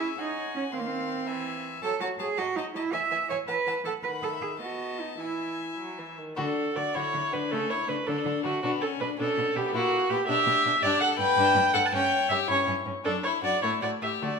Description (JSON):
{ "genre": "quick classical-period movement for string quartet", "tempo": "100-111 BPM (dotted quarters)", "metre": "6/8", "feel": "rubato", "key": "E major, D major from 6.4 s", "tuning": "A4 = 441 Hz", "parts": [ { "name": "rich violin", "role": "melody", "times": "0.0-14.4 s", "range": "A3 to C6", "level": "-31 LUFS", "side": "left 10 dB", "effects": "none" }, { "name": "dark violin", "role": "second line", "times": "0.0-14.4 s", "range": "A3 to F#5", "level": "-35 LUFS", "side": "left 3 dB", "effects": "none" }, { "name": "rich viola", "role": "accompaniment", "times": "0.0-14.4 s", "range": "D#3 to A5", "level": "-28 LUFS", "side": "right 2 dB", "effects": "none" }, { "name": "rich cello", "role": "bass", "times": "0.0-14.3 s", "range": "F#2 to E5", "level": "-32 LUFS", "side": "right 5 dB", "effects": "none" } ], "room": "wet recital hall reverb, RT60 1.6 s", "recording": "minimal, uncompressed stereo recording", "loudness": "-25 LUFS", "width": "side -5 dB against mid", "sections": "0.0-6.4 A section; 6.4-14.4 B section", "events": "none", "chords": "0.0 C#m; 0.7 Cmadd11/Eb; 1.3 Eaug; 1.8 F#m; 2.4 F#m6; 2.9 E; 3.5 F#m7; 4.0 B/D#; 4.6 B7; 5.2 E; 6.4 D; 7.5 A; 8.1 D5; 8.6 Bm; 9.7 F#7/A#; 10.3 Bm; 10.8 Gmaj9; 11.9 C#(b5, no3); 13.1 D; 13.6 Asus4", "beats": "0.18 | 0.73 1.28 | 1.83 2.38 | 2.93 3.48 | 4.03 4.60 | 5.19 5.79 | 6.38 6.96 | 7.52 8.08 | 8.64 9.20 | 9.74 10.29 | 10.83 11.38 | 11.93 12.49 | 13.05 13.63 | 14.22" }